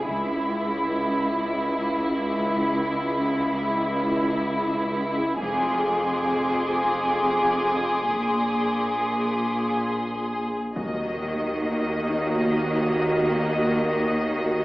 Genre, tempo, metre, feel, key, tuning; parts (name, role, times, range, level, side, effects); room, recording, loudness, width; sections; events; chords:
cinematic; 90 BPM; 4/4; straight; Eb minor from 10.8 s; A4 = 440 Hz
warm symphonic violin section; melody; 0.0-14.6 s; E4 to Eb5; -25 LUFS; equal
rich symphonic cello section; bass; 0.0-14.6 s; C#2 to Eb3; -27 LUFS; equal
saturated sub bass; drone; 0.0-14.6 s; F1 to Eb2; -34 LUFS; equal
concert harp; texture; 0.0-1.1, 7.8-14.6 s; D4 to Ab5; -37 LUFS; left 2 dB
warm symphonic double bass section; bass; 0.1-0.7, 5.4-14.6 s; F1 to Eb2; -33 LUFS; equal
warm symphonic violin section; texture; 5.4-10.4 s; C6 to D#6; -30 LUFS; equal
warm symphonic viola section; accompaniment; 10.8-14.6 s; Bb3 to Gb4; -25 LUFS; right 1 dB
impact; sound effects; 10.8-13.4 s; -36 LUFS; equal
wet scoring stage reverb, RT60 2.0 s; AM radio sound; -22 LUFS; side -18 dB against mid
0.0-10.8 A section; 10.8-14.6 B section
impact 10.8-13.4
0.1 C#m; 5.4 Fm; 8.1 A#7; 10.8 Ebm